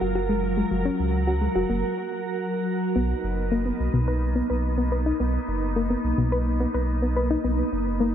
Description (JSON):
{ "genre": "IDM", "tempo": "107 BPM", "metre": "4/4", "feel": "straight", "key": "B lydian", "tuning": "A4 = 440 Hz", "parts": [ { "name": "glassy FM pad", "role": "sustained chords", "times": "0.0-8.1 s", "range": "F#3 to A#4", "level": "-27 LUFS", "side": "right 1 dB", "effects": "ensemble chorus, built-in reverb" }, { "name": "soft round pluck", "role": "arpeggios", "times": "0.0-8.1 s", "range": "B2 to B4", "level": "-27 LUFS", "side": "left 2 dB", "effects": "chorus, tape echo" }, { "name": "warm sub bass", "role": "bass", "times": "0.0-8.1 s", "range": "F#1 to C#2", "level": "-26 LUFS", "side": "equal", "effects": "tube saturation" } ], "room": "light reverb", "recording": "none", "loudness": "-22 LUFS", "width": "side -9 dB against mid", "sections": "0.0-3.0 A section; 3.0-8.1 B section", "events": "break 1.8-3.0", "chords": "0.0 F#maj7; 3.0 Bmaj7", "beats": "0.15 | 0.71 1.28 1.84 2.40 | 2.96 3.52 4.08 4.64 | 5.20 5.76 6.32 6.88 | 7.44 8.00" }